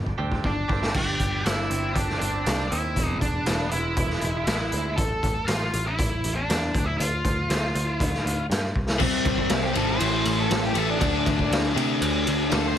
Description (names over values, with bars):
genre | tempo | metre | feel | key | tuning
quiet-loud alternative rock | 119 BPM | 4/4 | straight | unclear | A4 = 440 Hz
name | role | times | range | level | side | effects
picked electric bass | bass | 0.0-12.8 s | E1 to C3 | -28 LUFS | equal | none
raw garage drum kit | drums | 0.1-12.7 s | crash cymbal, hi-hat, kick drum, ride cymbal, snare drum | -26 LUFS | equal | none
twangy electric guitar | arpeggios | 0.2-5.0 s | E2 to G4 | -33 LUFS | right 4 dB | lush chorus, tape echo
octave-fuzz lead guitar | melody | 0.5-12.8 s | D4 to A5 | -28 LUFS | equal | distortion
overdriven electric guitar | riff | 9.0-12.8 s | A2 to D4 | -24 LUFS | left 2 dB | none
room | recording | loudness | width
light reverb, studio ambience | none | -22 LUFS | side -10 dB against mid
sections
0.9-9.0 A section; 9.0-12.8 B section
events
drum fill 0.0-0.9, 8.8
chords
0.0 Gsus4; 3.0 E; 5.0 A5; 6.7 Dm; 9.0 C5; 10.0 A5; 11.0 D5